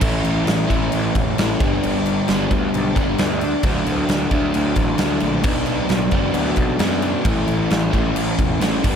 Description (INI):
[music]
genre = classic rock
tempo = 133 BPM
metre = 4/4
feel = straight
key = unclear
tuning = A4 = 440 Hz
[part]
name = overdriven semi-hollow guitar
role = riff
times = 0.0-9.0 s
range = G2 to E4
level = -20 LUFS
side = left 1 dB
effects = none
[part]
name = fuzz picked electric bass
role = bass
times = 0.0-9.0 s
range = E1 to F#2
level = -25 LUFS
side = equal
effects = overdrive
[part]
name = big rock drum kit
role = drums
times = 0.0-8.9 s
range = crash cymbal, kick drum, snare drum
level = -21 LUFS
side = equal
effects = none
[sound]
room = light reverb, studio reverb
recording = none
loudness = -17 LUFS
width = side -7 dB against mid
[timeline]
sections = 0.0-9.0 A section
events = none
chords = 0.0 A; 1.6 G; 3.6 D; 5.4 Bm; 7.3 A